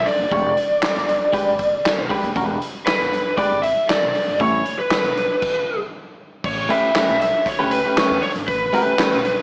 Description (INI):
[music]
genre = funk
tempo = 118 BPM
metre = 4/4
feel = straight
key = unclear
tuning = A4 = 440 Hz
[part]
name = lead guitar through a small cranked amp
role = melody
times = 0.0-9.4 s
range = B4 to E5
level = -22 LUFS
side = equal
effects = overdrive, slapback echo
[part]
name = upright bass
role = bass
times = 0.0-9.3 s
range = D#1 to E2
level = -32 LUFS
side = equal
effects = none
[part]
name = raw garage drum kit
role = drums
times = 0.1-9.4 s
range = crash cymbal, handclaps, hi-hat, kick drum, snare drum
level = -26 LUFS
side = equal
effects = none
[part]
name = clean electric guitar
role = accompaniment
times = 0.3-9.2 s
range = G3 to C#5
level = -24 LUFS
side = equal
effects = none
[sound]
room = light reverb, small room ambience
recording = small speaker sound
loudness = -20 LUFS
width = mono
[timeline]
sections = 0.0-6.4 A section; 6.4-9.4 B section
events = stop 5.4-6.4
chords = 0.0 E7#9 (rootless); 4.4 A9